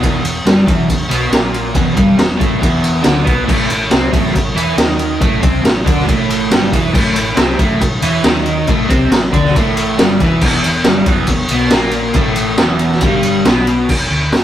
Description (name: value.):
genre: garage rock duo or trio.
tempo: 138 BPM.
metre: 4/4.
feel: straight.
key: E minor.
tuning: A4 = 440 Hz.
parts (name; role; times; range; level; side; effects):
crunchy overdriven guitar; riff; 0.0-13.9 s; E2 to E4; -15 LUFS; equal; none.
hollow-body short-scale fingered electric bass; bass; 0.0-14.4 s; E1 to E2; -22 LUFS; equal; none.
raw garage drum kit; drums; 0.0-14.4 s; crash cymbal, hi-hat, kick drum, ride cymbal, snare drum; -14 LUFS; equal; none.
room: moderate stone room reverb, RT60 1.1 s.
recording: rough rehearsal-room recording, warm saturation.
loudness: -11 LUFS.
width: side -11 dB against mid.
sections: 0.0-13.9 A section.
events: none.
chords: 0.0 Em; 3.5 A5; 10.4 Em.